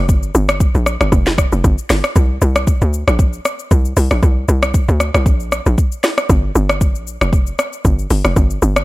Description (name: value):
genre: amapiano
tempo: 116 BPM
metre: 4/4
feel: swing 55% on 16ths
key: G minor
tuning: A4 = 440 Hz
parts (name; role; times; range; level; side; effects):
- tight log drum bass; bass; 0.0-8.8 s; F1 to D2; -15 LUFS; equal; none
- afro-pop drum kit; drums; 0.1-8.8 s; hi-hat, kick drum, rim click, shaker, snare drum; -15 LUFS; equal; none
room: digital ambience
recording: dark, warm production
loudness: -13 LUFS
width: side -19 dB against mid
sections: 0.0-8.8 A section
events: none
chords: none